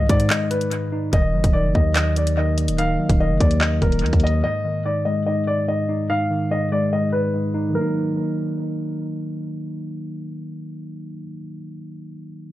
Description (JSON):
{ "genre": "hip hop, drill", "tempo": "145 BPM", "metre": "4/4", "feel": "half-time", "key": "Eb harmonic minor", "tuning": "A4 = 438 Hz", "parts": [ { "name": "dark baby grand piano", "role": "melody", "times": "0.0-9.0 s", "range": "Bb4 to F5", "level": "-24 LUFS", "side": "left 1 dB", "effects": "analog delay" }, { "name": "mellow tine electric piano", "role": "accompaniment", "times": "0.0-12.5 s", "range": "Ab2 to Eb5", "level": "-24 LUFS", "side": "equal", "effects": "analog delay" }, { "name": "distorted 808-style bass", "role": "bass", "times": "0.0-4.4 s", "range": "D1 to Ab2", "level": "-21 LUFS", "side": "equal", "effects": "distortion" }, { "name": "drill drum kit", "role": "drums", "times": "0.1-4.3 s", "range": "handclaps, hi-hat, kick drum", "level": "-21 LUFS", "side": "equal", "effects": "none" } ], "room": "light reverb", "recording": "echo-heavy mix, low-pass filter", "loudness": "-18 LUFS", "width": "side -15 dB against mid", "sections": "0.0-1.1 A section; 1.1-7.8 B section; 7.8-11.1 C section", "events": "break 0.3-1.1; filter sweep 1.1-7.8", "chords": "0.0 Abm; 1.1 Ebm; 4.4 Ab5; 7.8 Ebm" }